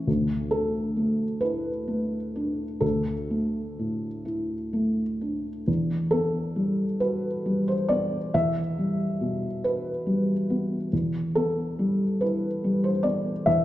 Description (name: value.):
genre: neoclassical minimalist piano.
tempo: 41-49 BPM (dotted quarters).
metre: 6/8.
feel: rubato.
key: E minor.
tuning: A4 = 441 Hz.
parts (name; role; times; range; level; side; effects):
felt-muted upright piano; solo; 0.0-13.6 s; D2 to E5; -24 LUFS; equal; none.
room: wet recital hall reverb, RT60 1.7 s.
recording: recorded in a church or concert hall.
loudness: -24 LUFS.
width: side -14 dB against mid.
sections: 0.0-5.7 A section; 5.7-13.6 A section.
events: none.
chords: 0.1 Dsus2; 5.7 Emadd9; 10.9 Cmaj7/E.